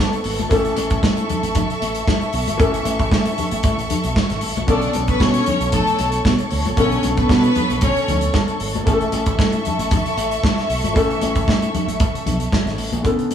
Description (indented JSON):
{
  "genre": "disco",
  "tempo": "115 BPM",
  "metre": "4/4",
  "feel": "straight",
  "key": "unclear",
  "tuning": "A4 = 441 Hz",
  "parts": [
    { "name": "warm baby grand piano", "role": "accompaniment", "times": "0.0-13.3 s", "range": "D3 to A4", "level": "-24 LUFS", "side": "left 2 dB", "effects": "none" },
    { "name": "dark studio string section", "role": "sustained chords", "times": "0.0-13.0 s", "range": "A4 to C#6", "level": "-24 LUFS", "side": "equal", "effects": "none" },
    { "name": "modern studio drum kit", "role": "drums", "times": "0.1-13.3 s", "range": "hi-hat, kick drum, snare drum", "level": "-21 LUFS", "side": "right 1 dB", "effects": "none" },
    { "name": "fingered electric bass", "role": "bass", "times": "0.3-13.0 s", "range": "G#1 to B2", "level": "-23 LUFS", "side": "equal", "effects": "none" },
    { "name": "congas", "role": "percussion", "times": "0.4-13.3 s", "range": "none", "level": "-26 LUFS", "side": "left 3 dB", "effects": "none" },
    { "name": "clear studio string section", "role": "second line", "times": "4.7-8.3 s", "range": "A3 to D5", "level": "-21 LUFS", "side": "left 1 dB", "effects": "none" }
  ],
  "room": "moderate studio reverb, RT60 0.7 s",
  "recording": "band playing live in one room, small room ambience",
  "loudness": "-16 LUFS",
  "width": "side -9 dB against mid",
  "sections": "0.0-13.0 A section",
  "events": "none",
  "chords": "0.0 Bm9; 0.5 A; 4.7 Bm9; 8.9 A"
}